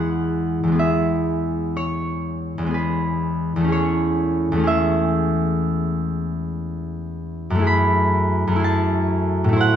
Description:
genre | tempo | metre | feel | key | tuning
classical, solo harp piece | 62 BPM | 4/4 | rubato | E major | A4 = 441 Hz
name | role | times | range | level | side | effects
concert harp | solo | 0.0-9.8 s | E2 to B5 | -18 LUFS | equal | none
room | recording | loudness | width
moderate recital hall reverb, RT60 1.6 s | small room ambience | -19 LUFS | side -9 dB against mid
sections
0.0-9.8 A section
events
none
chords
0.0 Eadd9; 3.7 Amaj7/E; 7.7 F#m11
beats
0.79 1.76 2.74 | 3.71 4.67 5.62 6.59 | 7.66 8.64 9.59

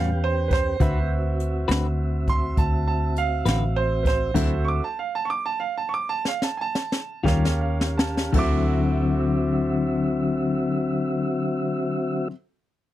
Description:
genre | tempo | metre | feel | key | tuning
slow blues | 53-68 BPM (dotted quarters) | 12/8 | straight | D mixolydian | A4 = 441 Hz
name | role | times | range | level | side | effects
bright upright piano | second line | 0.0-12.3 s | B4 to D6 | -27 LUFS | right 6 dB | none
clean electric guitar | accompaniment | 0.0-12.4 s | A2 to B4 | -25 LUFS | left 4 dB | harmonic tremolo
clear baby grand piano | accompaniment | 0.0-12.3 s | F#4 to A5 | -34 LUFS | right 6 dB | none
mellow tonewheel organ | sustained chords | 0.0-12.3 s | C4 to G5 | -28 LUFS | left 1 dB | slow rotary speaker
vintage muted fingered electric bass | bass | 0.0-12.3 s | A1 to E2 | -25 LUFS | equal | none
jazz brush drum kit | drums | 0.5-8.5 s | crash cymbal, hi-hat, kick drum, snare drum | -25 LUFS | equal | none
room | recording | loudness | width
little or no reverb | dry, close 1970s-style studio recording | -21 LUFS | side -13 dB against mid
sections
0.0-8.3 A section; 8.3-12.9 B section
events
upright piano solo 0.0-8.3; slowing down 3.2-8.3; stop 4.3-7.3; drum fill 6.2-8.3; grand piano fill 7.3-8.3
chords
0.0 A9; 0.8 D13; 4.3 D9; 7.3 Eb9; 8.3 D9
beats
| 0.80 1.69 2.57 3.45 | 4.35 5.27 6.23 7.25 | 8.35 9.49 10.63 11.77

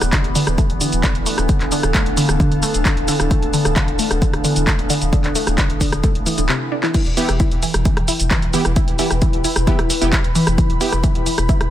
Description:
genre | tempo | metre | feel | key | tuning
driving peak-time techno | 132 BPM | 4/4 | straight | E phrygian | A4 = 440 Hz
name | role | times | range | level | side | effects
warm sub bass | bass | 0.0-11.7 s | D1 to E1 | -23 LUFS | equal | overdrive, sidechain pumping, low-pass filter
overtone-sweeping drone | drone | 0.0-6.5 s | E3 to B3 | -28 LUFS | right 1 dB | chorus, built-in reverb, phaser, sidechain pumping
punchy analog drum machine | drums | 0.0-11.7 s | crash cymbal, handclaps, hi-hat, rim click, shaker | -22 LUFS | equal | none
ethereal airy pad | texture | 0.0-11.7 s | B3 to B5 | -26 LUFS | left 1 dB | ensemble chorus, built-in reverb, sidechain pumping
wide unison pluck | riff | 0.1-11.6 s | C3 to E4 | -22 LUFS | equal | phaser, sidechain pumping, dub echo
electronic kick drum | drums | 0.1-11.6 s | none | -18 LUFS | equal | overdrive
supersaw stab | stabs | 7.2-10.9 s | B3 to G4 | -24 LUFS | right 2 dB | cassette tape, sidechain pumping, dub echo
room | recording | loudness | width
light reverb, digital ambience | none | -15 LUFS | side -12 dB against mid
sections
0.0-6.9 A section; 6.9-11.7 B section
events
drum fill 6.5-6.9; drop 6.9-11.7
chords
0.0 Dm; 6.9 Em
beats
0.13 0.58 1.04 | 1.49 1.95 2.40 2.85 | 3.31 3.76 4.22 4.67 | 5.13 5.58 6.04 6.49 | 6.95 7.40 7.85 8.31 | 8.76 9.22 9.67 10.13 | 10.58 11.04 11.49

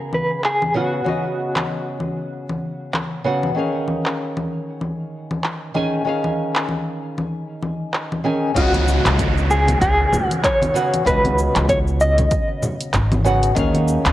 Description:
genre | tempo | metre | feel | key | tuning
sunset chillout | 96 BPM | 4/4 | swing 58% on 16ths | Db mixolydian | A4 = 439 Hz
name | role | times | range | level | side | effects
nylon-string guitar | accompaniment | 0.0-14.1 s | Db3 to Ab5 | -23 LUFS | equal | auto-pan, tape echo
mellow electric guitar | melody | 0.1-2.0, 8.6-13.2 s | Gb4 to Eb5 | -20 LUFS | equal | tremolo, tape echo
deep house drum kit | drums | 0.1-14.1 s | cabasa, congas, handclaps, hi-hat | -24 LUFS | left 1 dB | overdrive
upright bass | bass | 8.6-14.1 s | Ab1 to Eb2 | -19 LUFS | equal | tube saturation
electronic kick drum | drums | 8.6-13.7 s | none | -23 LUFS | equal | overdrive
downlifter | sound effects | 8.6-13.6 s | none | -28 LUFS | equal | none
congas | percussion | 8.7-13.8 s | none | -26 LUFS | equal | none
room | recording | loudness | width
light reverb, small room ambience | dry, gritty hardware recording, cassette tape | -17 LUFS | side -14 dB against mid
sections
0.0-8.6 A section; 8.6-14.1 B section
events
none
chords
0.0 Db9sus4; 3.6 Eb9sus4; 8.6 Db9sus4; 13.6 Eb9sus4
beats
0.44 | 1.06 1.69 2.31 2.94 | 3.56 4.19 4.81 5.44 | 6.06 6.69 7.31 7.94 | 8.56 9.19 9.81 10.44 | 11.06 11.69 12.31 12.94 | 13.56

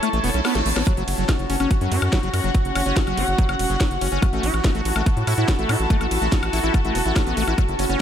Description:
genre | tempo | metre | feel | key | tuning
psychedelic trance | 143 BPM | 4/4 | straight | unclear | A4 = 441 Hz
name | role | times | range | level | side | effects
bubbling stepped-filter texture | sustained chords | 0.0-8.0 s | F#4 to C#5 | -27 LUFS | equal | chorus, built-in reverb, sidechain pumping
liquid acid bass | riff | 0.0-8.0 s | F#3 to F#4 | -26 LUFS | equal | chorus, auto-pan, cassette tape, sidechain pumping, ping-pong delay
drum and bass drum kit | drums | 0.0-8.0 s | hi-hat, ride cymbal, snare drum, woodblock | -28 LUFS | left 1 dB | small room ambience
reverse cymbal | sound effects | 0.2-0.9 s | none | -35 LUFS | right 5 dB | none
warm chamber string section | texture | 0.0-8.0 s | C#4 to A5 | -28 LUFS | left 2 dB | sidechain pumping
round analog bass | bass | 0.1-8.0 s | E1 to A2 | -24 LUFS | equal | none
electronic kick drum | drums | 0.9-7.7 s | none | -20 LUFS | equal | small room ambience
room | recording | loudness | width
light reverb | none | -18 LUFS | side -9 dB against mid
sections
0.0-8.0 A section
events
break 0.0-0.9; reverse cymbal 0.2-0.9; drum fill 0.4-0.9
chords
0.0 A5; 0.9 F#5; 4.2 A5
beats
0.03 0.45 | 0.87 1.29 1.71 2.13 | 2.55 2.96 3.38 3.81 | 4.22 4.64 5.06 5.48 | 5.90 6.32 6.74 7.16 | 7.58 8.00

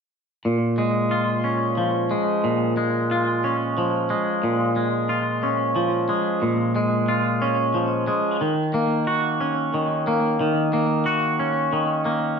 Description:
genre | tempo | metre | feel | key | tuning
rock | 60 BPM (dotted quarters) | 6/8 | straight | Bb minor | A4 = 440 Hz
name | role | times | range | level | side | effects
twangy electric guitar | arpeggios | 0.5-12.4 s | Bb2 to Gb4 | -20 LUFS | equal | wide subtle chorus, slapback echo
room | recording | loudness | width
moderate plate reverb, RT60 2.9 s | dark, warm production | -20 LUFS | side -6 dB against mid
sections
0.4-12.4 A section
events
none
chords
0.4 Bbm7; 8.4 Ebm7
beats
| 0.44 1.44 | 2.43 3.43 | 4.42 5.42 | 6.41 7.41 | 8.41 9.40 | 10.40 11.40

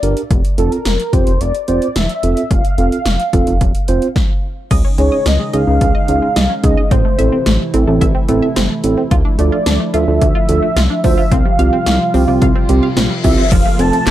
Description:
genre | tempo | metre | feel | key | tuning
synth-pop | 109 BPM | 4/4 | straight | F major | A4 = 438 Hz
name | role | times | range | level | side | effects
warm velvety synth lead | melody | 0.0-14.1 s | A4 to A5 | -20 LUFS | equal | chorus, analog delay
mellow tine electric piano | accompaniment | 0.0-14.0 s | C4 to C5 | -18 LUFS | right 4 dB | none
chorused synth bass | bass | 0.0-14.1 s | E1 to D2 | -16 LUFS | equal | none
80s electronic pad drums | drums | 0.0-14.1 s | crash cymbal, handclaps, hi-hat, kick drum, snare drum | -16 LUFS | equal | overdrive
chorused pulse-width pad | sustained chords | 4.7-14.1 s | C3 to F4 | -22 LUFS | equal | none
analog pluck | arpeggios | 4.7-14.1 s | F3 to F5 | -24 LUFS | left 1 dB | chorus, phaser, analog delay
reverse cymbal and downlifter | sound effects | 12.7-14.1 s | none | -25 LUFS | left 4 dB | none
room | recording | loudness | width
little or no reverb | dry, gritty hardware recording | -12 LUFS | side -13 dB against mid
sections
0.0-4.7 A section; 4.7-13.5 B section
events
stop 4.2-4.7; reverse cymbal 12.7-13.5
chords
0.3 F; 4.7 Dbsus2; 6.9 Am; 9.1 Dmadd9; 11.3 Csus4; 13.5 F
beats
| 0.31 0.86 1.41 1.96 | 2.51 3.06 3.61 4.16 | 4.71 5.26 5.81 6.36 | 6.91 7.46 8.01 8.56 | 9.11 9.66 10.21 10.77 | 11.31 11.87 12.42 12.97 | 13.52 14.07

